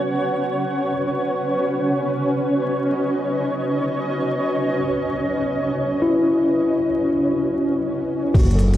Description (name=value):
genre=future garage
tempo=free time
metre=none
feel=none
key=unclear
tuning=A4 = 445 Hz
part: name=mellow tine electric piano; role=accompaniment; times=0.0-0.9, 6.0-8.8 s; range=E4 to A4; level=-21 LUFS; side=left 2 dB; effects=sidechain pumping, dub echo
part: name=granular cloud pad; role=sustained chords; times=0.0-8.8 s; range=C#4 to F#5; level=-21 LUFS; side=equal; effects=built-in reverb, vintage 12-bit sampler grit, sidechain pumping
part: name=flickering grainy texture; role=texture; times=0.0-8.4 s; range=C#5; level=-28 LUFS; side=right 1 dB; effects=built-in reverb
part: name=dark detuned saw bass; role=bass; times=8.3-8.8 s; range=F#1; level=-15 LUFS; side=equal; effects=tube saturation, sidechain pumping
part: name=electronic kick drum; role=drums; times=8.3-8.5 s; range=none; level=-15 LUFS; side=equal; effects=none
part: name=organic electronic drum kit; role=drums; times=8.3-8.8 s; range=crash cymbal, hi-hat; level=-36 LUFS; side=left 1 dB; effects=none
room=light reverb, digital ambience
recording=played on a big sound system in a bare room, stone room reverb, vinyl crackle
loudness=-18 LUFS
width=side -12 dB against mid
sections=0.0-8.3 A section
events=none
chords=0.0 F#5; 0.9 B; 4.6 C#m7